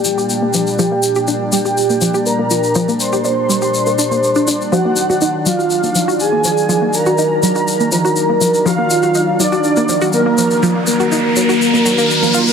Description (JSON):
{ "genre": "melodic techno", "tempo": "122 BPM", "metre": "4/4", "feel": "straight", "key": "unclear", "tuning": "A4 = 445 Hz", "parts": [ { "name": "wide unison lead", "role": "melody", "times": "0.0-12.5 s", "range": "Bb3 to C5", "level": "-17 LUFS", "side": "right 1 dB", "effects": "wide subtle chorus, ping-pong delay" }, { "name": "soft supersaw", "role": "second line", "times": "0.0-12.5 s", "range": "Bb4 to C6", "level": "-20 LUFS", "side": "right 1 dB", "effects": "low-pass filter, ping-pong delay" }, { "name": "lush unison pad", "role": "sustained chords", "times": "0.0-12.5 s", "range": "Bb2 to D4", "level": "-21 LUFS", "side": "equal", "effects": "chorus" }, { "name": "tube shaker", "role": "percussion", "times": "0.0-12.5 s", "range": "none", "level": "-21 LUFS", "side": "left 4 dB", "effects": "none" }, { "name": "analog pluck", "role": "arpeggios", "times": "0.1-12.4 s", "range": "F3 to G4", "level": "-18 LUFS", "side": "equal", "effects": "chorus, phaser, ping-pong delay" }, { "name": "riser", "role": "sound effects", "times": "10.0-12.5 s", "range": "none", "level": "-19 LUFS", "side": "equal", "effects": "none" } ], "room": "moderate huge ambient reverb, RT60 8.7 s", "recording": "heavily compressed radio sound, multiband compression", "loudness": "-12 LUFS", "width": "side -6 dB against mid", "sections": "0.0-12.5 A section", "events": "filter sweep on synth arpeggio sound 0.0-12.5; filter sweep on analog synth lead 0.0-12.5; filter sweep on supersaw synth 0.0-12.5; riser 10.0-12.5", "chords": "0.0 Gm; 4.7 Ebmadd9", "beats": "0.30 | 0.79 1.28 1.77 2.26 | 2.76 3.25 3.74 4.23 | 4.72 5.21 5.71 6.20 | 6.69 7.18 7.67 8.17 | 8.66 9.15 9.64 10.13 | 10.62 11.12 11.61 12.10" }